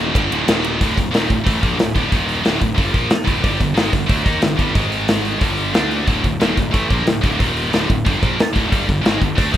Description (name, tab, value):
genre	heavy metal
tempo	182 BPM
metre	4/4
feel	straight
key	unclear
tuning	A4 = 440 Hz
part	scooped high-gain guitar	riff	0.0-9.6 s	D2 to Eb4	-19 LUFS	equal	distortion
part	fuzz picked electric bass	bass	0.0-9.6 s	D1 to Eb2	-24 LUFS	equal	overdrive
part	big rock drum kit	drums	0.2-9.6 s	hi-hat, kick drum, ride cymbal, snare drum	-18 LUFS	equal	none
room	studio ambience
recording	rough home demo mix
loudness	-15 LUFS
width	side -11 dB against mid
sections	0.8-9.6 A section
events	none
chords	0.1 D5; 0.5 Eb5; 0.8 Dm; 2.1 Eb5; 2.4 Dm; 3.4 G5; 4.8 G#5; 5.4 G5; 5.7 D5; 7.4 Eb5; 7.7 Dm; 8.7 G5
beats	0.14 0.47 | 0.80 1.13 1.46 1.79 | 2.12 2.45 2.78 3.11 | 3.44 3.77 4.10 4.43 | 4.76 5.09 5.42 5.75 | 6.07 6.40 6.73 7.06 | 7.39 7.72 8.05 8.38 | 8.71 9.04 9.37